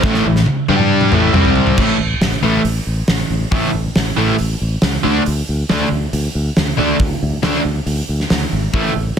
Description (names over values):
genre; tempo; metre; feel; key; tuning
hard rock; 138 BPM; 4/4; straight; unclear; A4 = 440 Hz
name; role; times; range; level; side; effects
crunchy overdriven guitar; riff; 0.0-1.8 s; A2 to G4; -22 LUFS; left 2 dB; none
overdriven electric guitar; riff; 0.0-8.9 s; A2 to G4; -18 LUFS; left 10 dB; none
overdriven electric guitar; riff; 0.0-8.9 s; A2 to G4; -18 LUFS; right 10 dB; none
fingered electric bass; bass; 0.0-9.1 s; G#1 to G2; -19 LUFS; equal; none
big rock drum kit; drums; 0.0-9.2 s; crash cymbal, hi-hat, kick drum, snare drum, toms; -18 LUFS; right 1 dB; none
room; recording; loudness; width
moderate studio reverb, RT60 0.5 s; dense, heavily limited modern master; -14 LUFS; side -8 dB against mid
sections
0.0-1.8 A section; 1.8-9.2 B section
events
drum fill 0.0-1.8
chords
0.0 A5; 0.7 G5; 1.1 A5; 1.3 C5; 1.8 A5; 5.0 D5